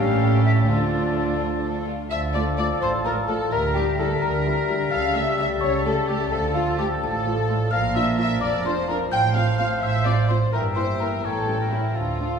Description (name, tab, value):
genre	cinematic, playful, whimsical film cue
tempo	85 BPM (dotted quarters)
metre	6/8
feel	straight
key	D minor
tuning	A4 = 440 Hz
part	dark symphonic violin section	melody	0.0-12.4 s	E4 to G5	-30 LUFS	left 1 dB	none
part	clear studio violin section	second line	0.0-12.4 s	C#4 to G5	-33 LUFS	left 2 dB	none
part	concert flute	second line	0.0-12.4 s	D5 to G5	-32 LUFS	left 1 dB	none
part	warm clarinet	second line	0.0-12.4 s	C#4 to G5	-30 LUFS	left 1 dB	none
part	warm oboe	second line	0.0-12.4 s	A4 to E5	-32 LUFS	equal	none
part	dark studio viola section	accompaniment	0.0-12.3 s	F3 to G4	-32 LUFS	equal	none
part	mellow bassoon	accompaniment	0.0-12.4 s	E3 to G3	-30 LUFS	left 2 dB	none
part	mellow French horn section	sustained chords	0.0-12.3 s	E3 to A4	-35 LUFS	left 1 dB	none
part	dark studio cello section	bass	0.0-12.4 s	F2 to D3	-28 LUFS	right 3 dB	none
part	dark studio double bass section	bass	0.0-12.4 s	F1 to D2	-26 LUFS	right 3 dB	none
part	worn celesta	melody	2.1-12.4 s	E5 to G6	-30 LUFS	left 5 dB	none
room	wet recital hall reverb, RT60 1.9 s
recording	recorded in a church or concert hall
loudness	-20 LUFS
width	side -6 dB against mid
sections	0.0-2.1 A section; 2.1-12.4 B section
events	none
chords	0.0 A7; 0.7 Dm; 3.5 Em7b5/D; 4.9 A7/C#; 6.3 Dm; 7.7 Bb; 9.1 F/A; 10.5 Edim/G; 11.2 A7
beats	| 0.68 1.40 | 2.11 2.82 | 3.52 4.22 | 4.92 5.62 | 6.32 7.02 | 7.72 8.42 | 9.12 9.82 | 10.53 11.23 | 11.95